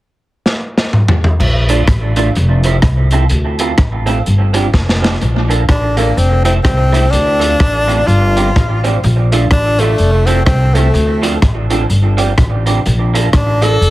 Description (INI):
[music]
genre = ska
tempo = 126 BPM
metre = 4/4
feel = swing 60% on 8ths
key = unclear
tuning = A4 = 437 Hz
[part]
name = crunchy breakbeat drum kit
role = drums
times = 0.5-13.9 s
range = crash cymbal, hi-hat, kick drum, rim click, snare drum, toms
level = -16 LUFS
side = equal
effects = tape echo
[part]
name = upright bass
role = bass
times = 1.4-13.9 s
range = F1 to D2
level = -13 LUFS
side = equal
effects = none
[part]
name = electric guitar through a small old amp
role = accompaniment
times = 1.7-13.7 s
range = F3 to A4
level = -19 LUFS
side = right 4 dB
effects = phaser, tape echo
[part]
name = bright tenor saxophone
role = melody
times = 5.7-13.9 s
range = A3 to A4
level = -15 LUFS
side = left 1 dB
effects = tape echo
[sound]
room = little or no reverb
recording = heavily compressed radio sound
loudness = -10 LUFS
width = side -16 dB against mid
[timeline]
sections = 0.0-1.4 A section; 1.4-5.2 B section; 5.2-13.9 C section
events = drum fill 0.4-1.4, 4.7-5.2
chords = 0.0 N.C.; 1.4 Bbmaj7; 2.4 Fmaj7; 3.3 Dm7; 4.3 G7sus4; 5.2 Bbmaj7; 6.2 Fmaj7; 7.1 Dm7; 8.1 G7sus4; 9.0 Bbmaj7; 10.0 Fmaj7; 11.0 Dm7; 11.9 G7sus4; 12.9 Bbmaj7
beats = 0.45 0.92 | 1.40 1.88 2.35 2.83 | 3.31 3.79 4.26 4.74 | 5.22 5.69 6.17 6.65 | 7.13 7.61 8.08 8.56 | 9.04 9.52 10.00 10.47 | 10.95 11.43 11.91 12.39 | 12.87 13.34 13.82